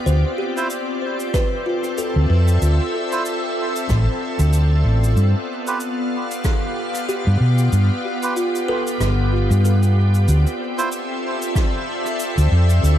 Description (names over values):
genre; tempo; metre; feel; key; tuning
ambient dub; 94 BPM; 4/4; swing 57% on 16ths; D dorian; A4 = 442 Hz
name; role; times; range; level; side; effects
soft additive organ-like pad; sustained chords; 0.0-13.0 s; B3 to F5; -24 LUFS; left 1 dB; ensemble chorus, built-in reverb
kalimba; arpeggios; 0.1-10.9 s; F4 to C5; -27 LUFS; equal; tape echo
hollow-body short-scale fingered electric bass; bass; 0.1-13.0 s; G1 to B2; -15 LUFS; equal; none
cabasa and rim click; drums; 0.1-13.0 s; none; -32 LUFS; equal; dub echo
melodica; stabs; 0.6-10.9 s; E4 to C5; -28 LUFS; right 3 dB; dub echo
electronic kick drum; drums; 1.3-6.6, 11.6-11.7 s; none; -20 LUFS; equal; overdrive
room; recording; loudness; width
light reverb; none; -17 LUFS; side -11 dB against mid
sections
0.0-10.3 A section; 10.3-13.0 B section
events
kick drops out 9.0-10.3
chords
0.1 Dm9; 5.2 G7; 10.3 Dm9